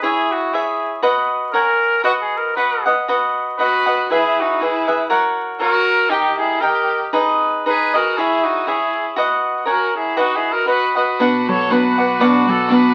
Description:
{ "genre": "mexican folk, mariachi", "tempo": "119 BPM", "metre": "2/4", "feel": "swing 54% on 8ths, rubato", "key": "B major", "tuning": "A4 = 440 Hz", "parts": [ { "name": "clear trumpet", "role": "melody", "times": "0.0-12.9 s", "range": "F#4 to C#5", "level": "-21 LUFS", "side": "equal", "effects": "none" }, { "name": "cavaquinho", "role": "accompaniment", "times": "0.0-12.9 s", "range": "D4 to G#5", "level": "-20 LUFS", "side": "equal", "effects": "none" }, { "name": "clear violin", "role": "second line", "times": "3.6-12.9 s", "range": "D4 to A4", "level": "-27 LUFS", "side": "equal", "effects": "none" }, { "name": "Celtic harp", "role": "arpeggios", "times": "11.2-12.9 s", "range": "B2 to B3", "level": "-18 LUFS", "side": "equal", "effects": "none" } ], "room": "wet studio reverb, RT60 0.5 s", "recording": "very old 78 rpm record, vinyl crackle", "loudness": "-17 LUFS", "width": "mono", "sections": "0.0-3.1 A section; 3.1-11.2 A section; 11.2-12.9 B section", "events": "none", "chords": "0.0 C#m; 1.0 B/F#; 1.5 F#add9; 2.0 B; 4.1 E; 5.1 F#; 6.1 D#; 7.1 G#m; 8.2 C#m; 9.2 B/F#; 9.7 F#add9; 10.2 B; 11.2 Bm" }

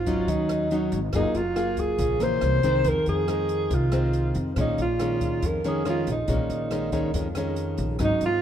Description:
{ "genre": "bossa nova", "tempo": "140 BPM", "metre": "4/4", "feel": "straight", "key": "Bb minor", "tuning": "A4 = 440 Hz", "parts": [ { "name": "breathy alto saxophone", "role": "melody", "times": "0.0-8.4 s", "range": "Eb4 to C5", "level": "-26 LUFS", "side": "right 2 dB", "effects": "none" }, { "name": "nylon-string guitar", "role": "accompaniment", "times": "0.0-8.4 s", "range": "F2 to Ab4", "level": "-27 LUFS", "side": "left 2 dB", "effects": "none" }, { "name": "upright bass", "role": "bass", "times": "0.0-8.4 s", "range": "Gb1 to F2", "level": "-28 LUFS", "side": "equal", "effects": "none" }, { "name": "open jazz drum kit", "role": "drums", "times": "0.1-8.3 s", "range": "hi-hat, kick drum, rim click", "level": "-33 LUFS", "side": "equal", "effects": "none" } ], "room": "light reverb, small room ambience", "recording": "rough home demo mix", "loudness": "-22 LUFS", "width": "side -9 dB against mid", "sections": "0.0-8.4 A section", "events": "none", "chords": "0.0 Ab7sus4; 1.1 Gbmaj9; 2.4 C7b9; 2.9 Fm7; 4.6 Bbm7" }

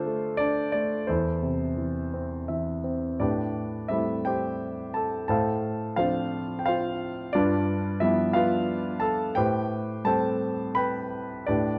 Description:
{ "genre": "classical, lyrical solo piano", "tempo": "87 BPM", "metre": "3/4", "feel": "uneven beats, rubato", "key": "A minor from 3.2 s", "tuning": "A4 = 438 Hz", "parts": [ { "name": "warm concert grand piano", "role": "solo", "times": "0.0-11.8 s", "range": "E2 to B5", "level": "-27 LUFS", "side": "equal", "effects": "none" } ], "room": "moderate recital hall reverb, RT60 1.5 s", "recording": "dark, warm production", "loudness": "-27 LUFS", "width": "mono", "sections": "0.0-3.2 A section; 3.2-11.8 B section", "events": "grand piano fill 2.1-3.2", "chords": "0.0 Dm; 1.1 Am/E; 3.2 Am9; 5.3 Dm7/A; 7.3 G7; 9.4 Am9" }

